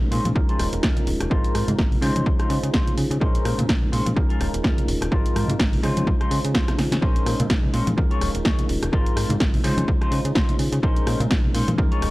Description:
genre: filtered disco house.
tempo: 126 BPM.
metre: 4/4.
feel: swing 56% on 16ths.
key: Bb minor.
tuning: A4 = 440 Hz.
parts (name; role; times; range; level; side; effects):
bell-like tine electric piano; accompaniment; 0.0-12.1 s; Ab3 to C5; -28 LUFS; equal; phaser, sidechain pumping, low-pass filter.
slap-like FM bass; bass; 0.0-12.1 s; Eb1 to Db3; -26 LUFS; equal; sidechain pumping, low-pass filter.
congas and tambourine; percussion; 0.0-12.1 s; none; -30 LUFS; left 1 dB; none.
clean electric guitar; riff; 0.1-12.1 s; Db4 to Db5; -31 LUFS; left 2 dB; sidechain pumping, low-pass filter.
punchy analog drum machine; drums; 0.1-12.1 s; hi-hat, rim click, snare drum; -27 LUFS; equal; overdrive, sidechain pumping on hats.
electronic kick drum; drums; 0.4-11.9 s; none; -22 LUFS; equal; overdrive.
room: digital ambience.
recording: dry, gritty hardware recording.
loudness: -19 LUFS.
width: side -19 dB against mid.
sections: 0.0-12.1 A section.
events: filter sweep 0.0-12.1; drum fill 6.8.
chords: 0.4 Eb9sus4; 1.3 Ab69; 2.0 Dbmaj9; 3.2 Bbm11; 4.2 Eb9sus4; 5.1 Ab69; 5.8 Dbmaj9; 7.0 Bbm11; 8.0 Eb9sus4; 8.9 Ab69; 9.6 Dbmaj9; 10.8 Bbm11.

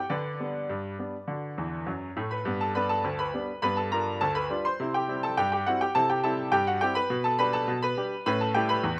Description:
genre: ragtime piano.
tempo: 103 BPM.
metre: 2/4.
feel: straight.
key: G major.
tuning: A4 = 440 Hz.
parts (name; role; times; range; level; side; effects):
clear grand piano; solo; 0.0-9.0 s; D2 to C6; -25 LUFS; equal; none.
room: little or no reverb.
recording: recorded outdoors, with no room sound.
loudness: -25 LUFS.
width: side -28 dB against mid.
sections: 0.0-2.5 A section; 2.5-9.0 B section.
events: grand piano fill 1.6-2.5.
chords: 0.1 G/D; 1.3 D; 2.5 G; 3.6 G7; 4.8 C; 7.1 G/B; 8.3 A7.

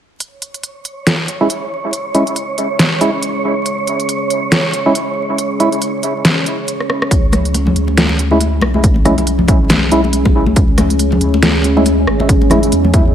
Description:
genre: deep dubstep.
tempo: 139 BPM.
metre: 4/4.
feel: swing 57% on 16ths, half-time.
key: C# phrygian.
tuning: A4 = 439 Hz.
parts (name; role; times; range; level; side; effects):
deep dark ambient pad; sustained chords; 2.4-13.1 s; C#4 to G#4; -19 LUFS; equal; chorus, built-in reverb.
dubstep drum kit; drums; 0.2-13.0 s; hi-hat, rim click, snare drum; -16 LUFS; equal; none.
wind-like tuned noise texture; texture; 1.0-7.1 s; C#5; -22 LUFS; right 5 dB; built-in reverb.
percussive organ stab; stabs; 1.4-5.7, 8.3-12.6 s; G#3 to E4; -18 LUFS; right 1 dB; wide subtle chorus, dub echo.
saturated sub bass; bass; 7.1-13.1 s; G#1 to E2; -17 LUFS; equal; none.
electronic kick drum; drums; 7.1-13.0 s; none; -12 LUFS; equal; none.
congas; percussion; 7.3-13.0 s; none; -18 LUFS; left 2 dB; dub echo.
room: moderate echo chamber reverb, RT60 1.8 s, digital ambience.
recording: echo-heavy mix, vinyl crackle.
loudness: -12 LUFS.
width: side -9 dB against mid.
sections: 0.2-7.1 A section; 7.1-13.1 B section.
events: filter sweep on synth stab 0.2-7.1; filter sweep on ambient pad 0.2-7.1; drum fill 6.8-7.1; build-up 7.1-13.1.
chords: 0.2 C#5; 7.1 C#m.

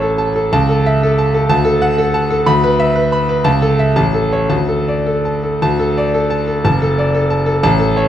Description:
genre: classical, virtuoso piano study.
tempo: 107-127 BPM.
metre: 2/4.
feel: rubato.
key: D major.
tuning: A4 = 437 Hz.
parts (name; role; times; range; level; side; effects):
clear grand piano; solo; 0.0-8.1 s; F#1 to B5; -12 LUFS; equal; none.
room: wet recital hall reverb, RT60 1.4 s.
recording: dark, warm production.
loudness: -12 LUFS.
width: side -11 dB against mid.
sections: 0.0-5.6 A section; 5.6-8.1 B section.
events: none.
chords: 0.0 A; 0.5 A/C#; 1.5 D; 2.5 E5/D; 3.4 A/C#; 4.0 A; 4.5 D5; 6.6 D/F#.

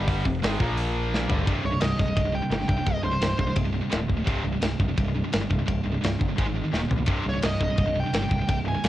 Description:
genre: heavy metal.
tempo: 171 BPM.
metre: 4/4.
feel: straight.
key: C minor.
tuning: A4 = 441 Hz.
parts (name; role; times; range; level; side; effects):
cranked stack guitar; riff; 0.0-1.5 s; F2 to Bb3; -32 LUFS; left 1 dB; overdrive, cassette tape.
high-gain distorted guitar; riff; 0.0-8.9 s; C2 to Bb3; -32 LUFS; left 8 dB; distortion, cassette tape.
high-gain distorted guitar; riff; 0.0-8.9 s; C2 to Bb3; -29 LUFS; right 6 dB; distortion, cassette tape.
growling picked electric bass; bass; 0.0-8.9 s; C1 to B1; -29 LUFS; equal; overdrive.
tight metal drum kit; drums; 0.1-8.9 s; hi-hat, kick drum, ride cymbal, snare drum, toms; -27 LUFS; equal; cassette tape.
high-gain lead guitar; melody; 1.7-3.5, 7.3-8.9 s; C5 to Ab5; -29 LUFS; equal; distortion, cassette tape.
room: light reverb.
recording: home recording on cassette.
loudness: -23 LUFS.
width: side -14 dB against mid.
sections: 0.0-1.5 A section; 1.5-8.9 B section.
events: drum fill 1.1-1.5, 6.7-7.1.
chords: 0.3 F5; 0.6 Bb5; 1.3 G5; 1.5 Cm; 3.9 D5; 4.3 C5; 6.4 Ab5; 6.7 Eb5; 7.1 Cm.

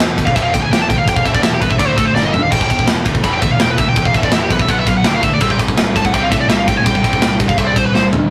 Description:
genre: heavy metal.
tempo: 166 BPM.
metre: 4/4.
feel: straight.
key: unclear.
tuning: A4 = 440 Hz.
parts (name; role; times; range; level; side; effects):
high-gain distorted guitar; riff; 0.0-8.3 s; E2 to D4; -24 LUFS; equal; distortion.
scooped high-gain guitar; riff; 0.0-8.3 s; E2 to D4; -28 LUFS; equal; none.
growling picked electric bass; bass; 0.0-8.3 s; E1 to A2; -24 LUFS; equal; overdrive.
tight metal drum kit; drums; 0.0-8.2 s; crash cymbal, kick drum, ride cymbal, snare drum, toms; -17 LUFS; equal; none.
high-gain lead guitar; melody; 0.3-8.1 s; G4 to B5; -19 LUFS; equal; distortion.
brassy analog pad; sustained chords; 2.5-8.3 s; C3 to B5; -34 LUFS; equal; none.
room: moderate studio ambience, RT60 0.5 s.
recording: rough rehearsal-room recording, warm saturation.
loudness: -14 LUFS.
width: mono.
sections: 0.0-8.3 A section.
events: lead electric guitar solo 0.0-8.3; drum fill 2.2-2.5, 7.9-8.3.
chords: 0.0 E5; 1.8 D5; 2.2 G5; 2.5 Em; 4.7 B5; 5.0 D5; 5.4 C.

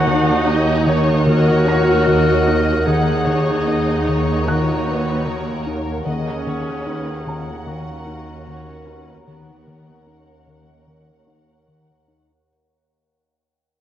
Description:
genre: cinematic, suspense film score.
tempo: 75 BPM.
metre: 4/4.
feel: straight.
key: Eb minor.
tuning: A4 = 440 Hz.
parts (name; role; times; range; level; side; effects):
rich studio violin section; melody; 0.0-12.2 s; Db5 to Gb5; -31 LUFS; left 4 dB; none.
warm clarinet; second line; 0.0-11.7 s; Db4 to Bb4; -23 LUFS; left 2 dB; none.
warm studio violin section; second line; 0.0-12.0 s; Bb4 to Gb5; -26 LUFS; left 1 dB; none.
rich studio viola section; accompaniment; 0.0-11.7 s; Bb3 to Gb4; -23 LUFS; right 1 dB; none.
glassy FM pad; sustained chords; 0.0-12.4 s; Bb4 to Bb5; -30 LUFS; left 1 dB; ensemble chorus, built-in reverb.
rich studio cello section; bass; 0.0-12.2 s; Eb2; -25 LUFS; right 2 dB; none.
warm studio double bass section; bass; 0.0-12.2 s; Eb2; -23 LUFS; right 2 dB; none.
overtone-sweeping drone; drone; 0.0-12.4 s; Eb2; -30 LUFS; equal; none.
rich studio violin section; texture; 0.0-5.6 s; Eb6 to Gb6; -37 LUFS; equal; none.
rubbery square bass; riff; 0.1-12.3 s; Eb3 to Eb4; -24 LUFS; left 2 dB; none.
felt-muted upright piano; texture; 1.7-12.5 s; Bb5 to Bb6; -33 LUFS; left 1 dB; none.
room: moderate scoring stage reverb, RT60 1.5 s.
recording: worn, warbling old tape, cassette tape, warbly pitch drift.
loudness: -15 LUFS.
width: side -11 dB against mid.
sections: 0.0-12.5 A section.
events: fade-out 0.0-12.5.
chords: 0.0 Ebm7.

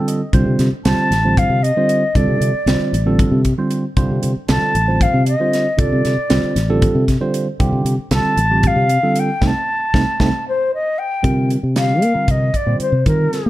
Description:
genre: electric jazz fusion.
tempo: 231 BPM (eighths).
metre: 7/8.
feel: straight.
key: C dorian.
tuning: A4 = 440 Hz.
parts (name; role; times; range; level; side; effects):
bright tine electric piano; accompaniment; 0.0-13.4 s; D3 to Eb5; -20 LUFS; right 2 dB; phaser.
crisp fusion drum kit; drums; 0.1-13.4 s; hi-hat, kick drum, snare drum; -20 LUFS; equal; none.
fingered electric bass; bass; 0.3-13.5 s; A1 to Bb3; -17 LUFS; equal; none.
mellow concert flute; melody; 0.8-13.5 s; Bb4 to A5; -19 LUFS; left 1 dB; slapback echo.
room: small room ambience.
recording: dark, warm production.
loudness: -14 LUFS.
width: side -15 dB against mid.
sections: 0.0-11.2 A section; 11.2-13.5 B section.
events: tine electric piano fill 0.0-0.3; band accent 9.4-11.2.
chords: 0.0 Csus2; 11.2 C9sus4.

